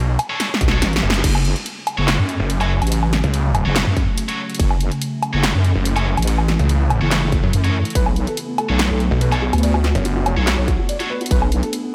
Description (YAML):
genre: heavy wobble dubstep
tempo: 143 BPM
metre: 4/4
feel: half-time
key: F# minor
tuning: A4 = 440 Hz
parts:
  - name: snarling distorted saw bass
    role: bass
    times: 0.0-10.4 s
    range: F#1 to F#2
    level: -20 LUFS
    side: equal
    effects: distortion, overdrive
  - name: big-room dance drum kit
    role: drums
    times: 0.2-11.8 s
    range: crash cymbal, handclaps, hi-hat, ride cymbal, snare drum, woodblock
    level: -25 LUFS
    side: equal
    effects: none
  - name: scooped high-gain guitar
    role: stabs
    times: 0.3-11.1 s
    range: D4 to C#5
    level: -30 LUFS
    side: equal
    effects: distortion, diffuse ambient delay
  - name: electronic kick drum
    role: drums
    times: 0.6-1.3, 4.0-4.7, 7.3-8.0, 10.7-11.4 s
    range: none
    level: -22 LUFS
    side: equal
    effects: none
  - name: wobble bass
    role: bass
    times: 0.8-11.6 s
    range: F#1 to F#2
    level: -20 LUFS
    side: equal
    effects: chorus, overdrive
  - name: evolving wavetable pad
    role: sustained chords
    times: 2.5-11.9 s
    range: C#3 to D4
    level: -29 LUFS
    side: equal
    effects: phaser, built-in reverb, sidechain pumping
  - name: felt-muted upright piano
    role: melody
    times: 8.0-11.9 s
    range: B3 to D5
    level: -28 LUFS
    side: equal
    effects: diffuse ambient delay
room: moderate lush hall reverb, RT60 1.8 s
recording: dreamy mix soaked in reverb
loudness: -18 LUFS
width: mono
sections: 0.0-1.2 A section; 1.2-11.9 A section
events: drop 0.0-1.2, 1.2-11.9; drum fill 0.4-1.2; kick drops out 0.8-1.2; band accent 1.1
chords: 0.0 Bm7; 1.2 F#m; 8.0 Bm7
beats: 0.40 0.82 | 1.24 1.66 2.08 2.50 | 2.92 3.34 3.76 4.18 | 4.60 5.02 5.43 5.86 | 6.27 6.69 7.11 7.53 | 7.95 8.37 8.79 9.21 | 9.63 10.05 10.47 10.89 | 11.31 11.73